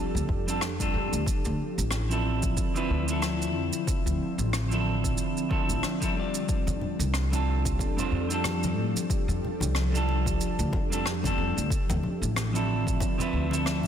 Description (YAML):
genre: sunset chillout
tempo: 92 BPM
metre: 4/4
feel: swing 57% on 16ths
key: F major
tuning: A4 = 443 Hz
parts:
  - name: semi-hollow electric guitar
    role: accompaniment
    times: 0.0-13.9 s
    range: F3 to D5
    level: -31 LUFS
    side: moving between left 4 dB and right 5 dB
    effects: auto-pan, digital delay
  - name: ethereal airy pad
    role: sustained chords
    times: 0.0-13.9 s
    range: D3 to E5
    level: -33 LUFS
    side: left 1 dB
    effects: ensemble chorus, built-in reverb
  - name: upright bass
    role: bass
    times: 0.1-13.9 s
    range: A1 to A2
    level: -29 LUFS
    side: equal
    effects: none
  - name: shaker and rim click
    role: drums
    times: 0.2-13.8 s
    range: none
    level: -34 LUFS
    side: right 1 dB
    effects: soft clipping on snare
  - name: electronic kick drum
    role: drums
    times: 0.3-13.2 s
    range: none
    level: -30 LUFS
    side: equal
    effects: none
  - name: congas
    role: percussion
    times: 6.7-13.9 s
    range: none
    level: -36 LUFS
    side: left 3 dB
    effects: none
room: light reverb, small room reverb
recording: dense, heavily limited modern master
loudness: -25 LUFS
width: side -9 dB against mid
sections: 0.0-13.9 A section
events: none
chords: 0.0 F69; 1.3 Dm9; 6.5 F69; 11.7 Dm9